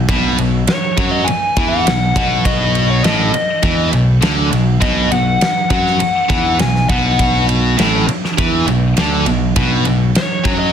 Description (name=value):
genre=hard rock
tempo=101 BPM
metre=4/4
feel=straight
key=B mixolydian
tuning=A4 = 437 Hz
part: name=high-gain distorted guitar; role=riff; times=0.0-10.7 s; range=A2 to F#3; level=-16 LUFS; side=equal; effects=distortion
part: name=picked electric bass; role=bass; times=0.0-10.7 s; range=A1 to F#2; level=-18 LUFS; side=equal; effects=none
part: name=big rock drum kit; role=drums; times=0.1-10.6 s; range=kick drum, ride cymbal, snare drum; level=-18 LUFS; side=right 1 dB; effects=none
part: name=biting lead guitar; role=melody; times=0.7-10.7 s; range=C#5 to G#5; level=-18 LUFS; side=left 2 dB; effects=overdrive, slapback echo
room=light reverb, small room ambience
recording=dense, heavily limited modern master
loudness=-12 LUFS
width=side -8 dB against mid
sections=0.0-10.7 A section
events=none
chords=0.0 B5